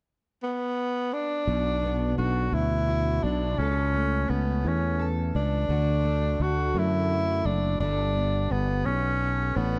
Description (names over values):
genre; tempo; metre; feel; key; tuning
pop; 57 BPM (dotted quarters); 6/8; straight; B minor; A4 = 440 Hz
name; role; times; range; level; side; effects
breathy tenor saxophone; melody; 0.4-9.8 s; B3 to F#4; -30 LUFS; equal; delay
fingerpicked plugged-in steel-string acoustic guitar; accompaniment; 1.5-9.8 s; B2 to A4; -34 LUFS; equal; double-tracked
sustaining fretless electric bass; bass; 1.5-9.8 s; F#1 to F#2; -29 LUFS; equal; none
room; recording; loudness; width
light reverb, studio reverb; dark, warm production; -26 LUFS; mono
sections
0.0-1.5 A section; 1.5-9.8 B section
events
none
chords
0.0 N.C.; 1.5 Bm; 3.6 A/C#; 5.7 D; 7.8 Gadd9